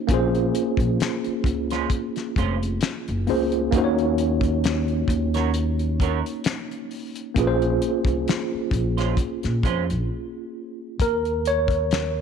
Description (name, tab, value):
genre	R&B, neo-soul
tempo	66 BPM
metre	4/4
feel	swing 55% on 16ths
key	Eb dorian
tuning	A4 = 439 Hz
part	tine electric piano	accompaniment	0.0-12.2 s	Bb3 to Db5	-24 LUFS	right 1 dB	overdrive, fast stereo tremolo
part	upright bass	bass	0.1-12.2 s	F1 to Bb2	-26 LUFS	equal	transformer saturation
part	cloth-damped thuddy drum kit	drums	0.1-12.2 s	finger snaps, hi-hat, kick drum, snare drum	-25 LUFS	left 2 dB	none
part	electric guitar through a small old amp	second line	1.7-9.8 s	Ab3 to Db5	-29 LUFS	right 15 dB	lush chorus
room	light reverb, small room ambience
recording	1960s-style stereo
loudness	-21 LUFS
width	side -7 dB against mid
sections	0.0-11.0 A section; 11.0-12.2 B section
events	break 10.1-11.0; tine electric piano solo 11.0-12.2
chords	0.1 Bbm9; 3.7 Ebm7; 7.4 Bbm9; 11.0 Eb7(no3)